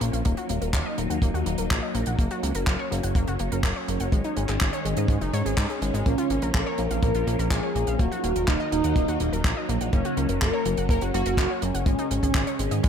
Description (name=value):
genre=italo disco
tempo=124 BPM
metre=4/4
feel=straight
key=unclear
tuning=A4 = 436 Hz
part: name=phased string machine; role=sustained chords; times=0.0-12.9 s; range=Eb3 to Eb4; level=-30 LUFS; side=equal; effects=ensemble chorus, phaser
part: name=wide unison pluck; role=arpeggios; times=0.0-12.9 s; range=Ab3 to Gb5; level=-33 LUFS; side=left 4 dB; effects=ping-pong delay
part: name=fat analog bass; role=bass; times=0.0-12.9 s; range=Eb1 to Ab2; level=-28 LUFS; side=equal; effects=none
part: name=tight funk drum kit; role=drums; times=0.0-12.9 s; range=handclaps, hi-hat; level=-32 LUFS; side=equal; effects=gated reverb
part: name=kick drum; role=drums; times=0.3-12.9 s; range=none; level=-24 LUFS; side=equal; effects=none
part: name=wide unison lead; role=melody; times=6.1-12.9 s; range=Db4 to Bb4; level=-27 LUFS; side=right 1 dB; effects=ensemble chorus, vintage 12-bit sampler grit, ping-pong delay
room=light reverb, studio reverb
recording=none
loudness=-22 LUFS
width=side -8 dB against mid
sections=0.0-12.9 A section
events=none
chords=0.3 Ebm; 2.2 Gb; 4.1 Absus4; 6.1 Bbm; 8.0 Ebm; 9.9 Gb; 11.9 Absus4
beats=| 0.25 0.74 1.22 1.71 | 2.19 2.67 3.16 3.64 | 4.12 4.61 5.09 5.58 | 6.06 6.54 7.03 7.51 | 8.00 8.48 8.96 9.45 | 9.93 10.41 10.90 11.38 | 11.87 12.35 12.83